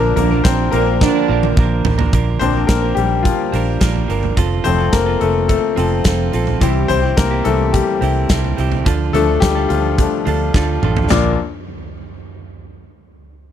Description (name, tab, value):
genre	piano-driven pop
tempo	107 BPM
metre	4/4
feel	straight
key	Bb lydian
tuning	A4 = 440 Hz
part	bright concert grand piano	accompaniment	0.0-11.4 s	Bb1 to D5	-18 LUFS	left 8 dB	none
part	direct-recorded clean electric guitar	riff	0.0-11.3 s	Bb2 to Bb4	-22 LUFS	right 9 dB	none
part	vintage muted fingered electric bass	bass	0.0-11.4 s	F1 to D2	-19 LUFS	equal	none
part	mellow French horn section	second line	0.2-1.5 s	Bb2 to D4	-19 LUFS	right 11 dB	none
part	huge arena drum kit	drums	0.2-11.2 s	hi-hat, kick drum, snare drum, splash cymbal, toms	-20 LUFS	right 1 dB	none
room	little or no reverb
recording	none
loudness	-13 LUFS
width	side -10 dB against mid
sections	0.0-2.1 A section; 2.1-11.1 B section; 11.1-13.3 C section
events	grand piano solo 0.0-2.1, 2.1-11.1; drum fill 1.0-2.1, 10.5-11.1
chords	0.0 Bb; 4.4 F; 6.6 C; 8.9 Dm; 11.1 Bb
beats	0.45 1.01 1.57 | 2.13 2.69 3.25 3.81 | 4.38 4.93 5.50 6.06 | 6.62 7.18 7.74 8.30 | 8.86 9.42 9.98 10.54 | 11.10